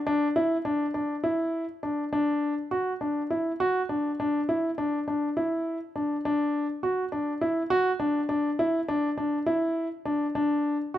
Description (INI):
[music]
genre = contemporary instrumental, contemporary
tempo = 204 BPM (eighths)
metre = 7/8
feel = straight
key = D major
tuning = A4 = 440 Hz
[part]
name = dark grand piano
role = solo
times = 0.1-11.0 s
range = D4 to F#4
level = -25 LUFS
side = equal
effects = none
[sound]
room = light reverb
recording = close, detailed microphones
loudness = -25 LUFS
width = side -12 dB against mid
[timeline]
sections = 0.0-11.0 A section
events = none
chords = none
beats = 0.07 0.36 0.65 0.94 1.24 | 1.53 1.82 2.12 2.41 2.71 3.01 3.30 | 3.60 3.90 4.19 4.49 4.78 5.08 5.37 | 5.66 5.96 6.25 6.54 6.83 7.12 7.41 | 7.70 7.99 8.29 8.58 8.88 9.17 9.46 | 9.76 10.05 10.34 10.64 10.94